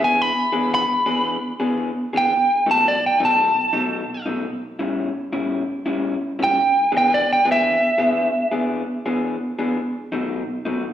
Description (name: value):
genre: blues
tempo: 112 BPM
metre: 4/4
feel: swing 65% on 8ths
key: E mixolydian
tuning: A4 = 443 Hz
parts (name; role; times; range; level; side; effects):
- lightly driven lead guitar; melody; 0.0-8.5 s; D5 to B5; -17 LUFS; right 1 dB; plate reverb, slapback echo
- electric guitar through a small old amp; riff; 0.0-10.8 s; A2 to G#4; -23 LUFS; left 2 dB; slapback echo
room: moderate club ambience, RT60 0.5 s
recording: live gig heard through the venue's PA, recital hall reverb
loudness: -18 LUFS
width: side -10 dB against mid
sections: 0.0-10.8 A section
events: none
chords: 0.0 E7; 2.3 B7; 4.4 A7; 6.6 E7; 9.8 B7